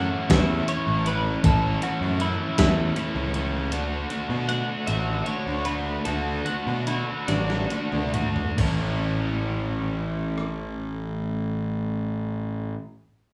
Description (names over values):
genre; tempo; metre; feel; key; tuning
indie rock; 45-53 BPM (dotted quarters); 6/8; straight; A major; A4 = 435 Hz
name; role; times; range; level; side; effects
twelve-string electric guitar; melody; 0.0-8.1 s; D4 to F#5; -32 LUFS; equal; subtle chorus, slapback echo
biting overdriven guitar; riff; 0.0-12.8 s; A2 to F#4; -31 LUFS; equal; none
biting overdriven guitar; riff; 0.0-12.8 s; A2 to A4; -38 LUFS; equal; none
fuzz picked electric bass; bass; 0.0-12.7 s; A1 to B2; -30 LUFS; equal; overdrive
crisp 8-bit digital drum machine; drums; 0.3-10.6 s; hi-hat, kick drum, ride cymbal, rim click, snare drum, toms; -27 LUFS; equal; none
room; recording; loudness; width
little or no reverb; rough home demo mix, studio reverb; -26 LUFS; mono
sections
0.0-8.6 A section; 8.6-11.3 B section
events
clean electric guitar solo 0.0-8.6; slowing down 3.7-8.6; drum fill 7.3-8.6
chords
0.0 A; 3.7 D; 8.6 A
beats
0.30 | 1.44 2.58 | 3.72 4.87 | 6.06 7.29 | 8.59 9.94